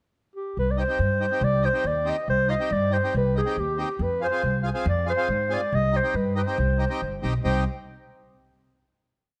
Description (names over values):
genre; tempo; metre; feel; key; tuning
klezmer; 139 BPM; 4/4; straight; C harmonic minor; A4 = 440 Hz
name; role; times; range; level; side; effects
breathy clarinet; melody; 0.4-7.6 s; G4 to Eb5; -27 LUFS; equal; none
upright bass; bass; 0.6-7.6 s; G1 to Ab2; -28 LUFS; equal; none
accordion; accompaniment; 0.8-7.6 s; C4 to Ab4; -34 LUFS; equal; none
room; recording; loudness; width
light reverb; none; -24 LUFS; mono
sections
0.0-0.6 pickup bar; 0.6-7.4 A section; 7.4-9.2 final chord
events
none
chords
0.0 N.C.; 0.6 Cm; 4.0 Fm; 5.7 Cm